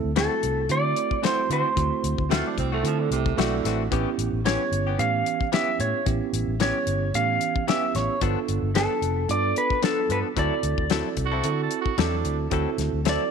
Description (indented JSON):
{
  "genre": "straight-eighth soul blues",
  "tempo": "112 BPM",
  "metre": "4/4",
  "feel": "swing 54% on 16ths",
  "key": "D mixolydian",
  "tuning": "A4 = 440 Hz",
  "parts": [
    { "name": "bell-like tine electric piano", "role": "accompaniment", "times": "0.0-13.3 s", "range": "E3 to A4", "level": "-29 LUFS", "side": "right 12 dB", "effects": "fast stereo tremolo" },
    { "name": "vintage muted fingered electric bass", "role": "bass", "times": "0.0-13.2 s", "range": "F1 to D3", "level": "-27 LUFS", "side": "left 1 dB", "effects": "none" },
    { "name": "clean lap steel guitar", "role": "melody", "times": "0.2-13.3 s", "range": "A4 to F5", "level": "-26 LUFS", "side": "right 1 dB", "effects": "none" },
    { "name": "direct-recorded clean electric guitar", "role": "stabs", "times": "0.2-13.2 s", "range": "E3 to A4", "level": "-32 LUFS", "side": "left 12 dB", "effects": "wide subtle chorus" },
    { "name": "damped 70s drum kit", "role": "drums", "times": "0.2-13.2 s", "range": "hi-hat, kick drum, snare drum", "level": "-28 LUFS", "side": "left 6 dB", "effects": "none" },
    { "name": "raspy tenor saxophone", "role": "second line", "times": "2.3-3.9, 11.3-12.4 s", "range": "C3 to A4", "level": "-30 LUFS", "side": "right 10 dB", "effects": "none" }
  ],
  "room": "light reverb",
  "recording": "1960s-style stereo with parts hard left and right",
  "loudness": "-22 LUFS",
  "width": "side -6 dB against mid",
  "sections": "0.0-12.5 A section",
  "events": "none",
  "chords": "0.0 D9; 3.9 A9; 8.2 G9; 10.4 D9"
}